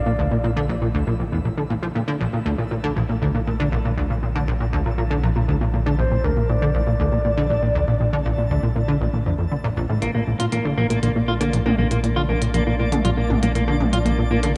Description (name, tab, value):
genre	ambient, sequencer-driven space music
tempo	119 BPM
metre	4/4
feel	straight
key	Bb lydian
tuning	A4 = 441 Hz
part	soft octave-layered synth lead	melody	0.0-0.4, 6.0-9.5 s	Bb4 to D5	-30 LUFS	equal	chorus, phaser, analog delay
part	warm sub bass	bass	0.0-14.6 s	Bb1	-28 LUFS	equal	none
part	twinkling granular texture	texture	0.0-14.6 s	E3 to E6	-38 LUFS	equal	built-in reverb
part	plucky analog bass	riff	0.1-14.5 s	Bb1 to F3	-23 LUFS	equal	lush chorus, analog delay
part	semi-hollow electric guitar	arpeggios	10.0-14.5 s	Bb3 to F4	-26 LUFS	equal	analog delay
part	minimal click drum kit	percussion	10.0-14.5 s	hi-hat, toms	-30 LUFS	equal	analog delay
room	wet cathedral reverb, RT60 5.1 s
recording	in a vast, echoing space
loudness	-21 LUFS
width	mono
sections	0.0-14.6 A section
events	fade-in on synth texture 0.0-14.6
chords	0.0 Bb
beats	0.44 0.95 1.45 | 1.95 2.46 2.96 3.47 | 3.97 4.47 4.98 5.48 | 5.99 6.49 7.00 7.50 | 8.00 8.51 9.01 9.52 | 10.02 10.53 11.03 11.53 | 12.04 12.54 13.05 13.55 | 14.05 14.56